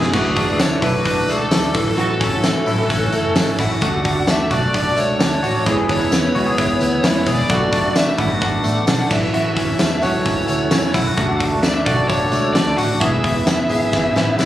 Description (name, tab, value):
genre	jangly indie pop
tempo	130 BPM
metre	4/4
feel	straight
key	unclear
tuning	A4 = 440 Hz
part	dark smooth lead guitar	melody	0.0-14.3 s	G#4 to F#5	-22 LUFS	equal	overdrive, slapback echo
part	combo organ	accompaniment	0.0-14.5 s	A3 to B4	-28 LUFS	right 1 dB	none
part	fingerpicked steel-string acoustic guitar	accompaniment	0.0-14.5 s	A2 to F#4	-25 LUFS	right 5 dB	none
part	direct-recorded clean electric guitar	arpeggios	0.0-14.5 s	E3 to G#4	-21 LUFS	left 2 dB	analog chorus, slapback echo
part	vintage muted fingered electric bass	bass	0.0-14.5 s	E1 to E2	-24 LUFS	equal	none
part	big rock drum kit	drums	0.0-14.5 s	crash cymbal, hi-hat, kick drum, snare drum	-20 LUFS	equal	none
part	tambourine	percussion	0.6-14.5 s	none	-34 LUFS	left 2 dB	none
room	light reverb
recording	recorded on a phone in the room, club reverb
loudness	-15 LUFS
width	side -13 dB against mid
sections	0.1-14.5 A section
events	drum fill 13.9-14.5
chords	0.1 Dadd9; 1.8 A6; 3.8 D; 5.7 E; 7.5 Bm7; 9.1 A6; 11.2 D; 13.0 E